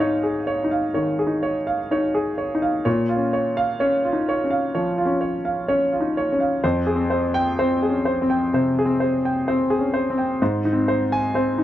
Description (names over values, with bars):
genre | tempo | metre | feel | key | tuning
neoclassical minimalist piano | 63 BPM | 4/4 | rubato | unclear | A4 = 440 Hz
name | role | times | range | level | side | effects
clear concert grand piano | solo | 0.0-11.6 s | F2 to Ab5 | -19 LUFS | equal | none
room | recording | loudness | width
light reverb | dry, close 1970s-style studio recording | -19 LUFS | side -13 dB against mid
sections
0.0-11.6 A section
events
none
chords
0.0 Dbadd9/Ab; 2.9 Bbm; 6.6 Fmadd9; 10.4 Ab